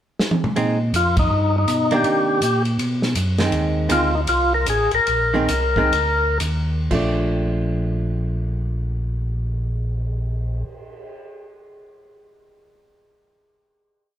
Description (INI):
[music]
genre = soul jazz organ trio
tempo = 114-162 BPM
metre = 4/4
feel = swing 63% on 8ths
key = unclear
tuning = A4 = 440 Hz
[part]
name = warm soul drum kit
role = drums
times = 0.2-11.0 s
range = crash cymbal, cymbal swell, hi-hat, kick drum, ride cymbal, snare drum, toms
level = -26 LUFS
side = equal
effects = none
[part]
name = archtop guitar, miked and amplified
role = accompaniment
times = 0.6-10.7 s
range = Eb3 to Eb4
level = -23 LUFS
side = right 2 dB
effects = none
[part]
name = mellow tonewheel organ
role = bass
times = 0.6-10.6 s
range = A1 to C3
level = -22 LUFS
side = equal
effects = overdrive, chorus vibrato, slow rotary speaker
[part]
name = percussive tonewheel organ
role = melody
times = 1.0-6.4 s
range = Eb4 to Bb4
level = -19 LUFS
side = left 2 dB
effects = slow rotary speaker
[sound]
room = moderate stone room reverb, RT60 1.3 s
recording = band playing live in one room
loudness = -18 LUFS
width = side -10 dB against mid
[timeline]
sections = 0.0-0.6 pickup bar; 0.6-6.9 A section; 6.9-11.1 final chord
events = drum fill 0.2-0.6; band accent 1.1; slowing down 3.5-6.9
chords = 0.0 N.C.; 0.6 Bb9sus4; 1.3 G; 2.0 Cm9; 2.8 B; 3.5 Bb9sus4; 6.9 Bbmaj7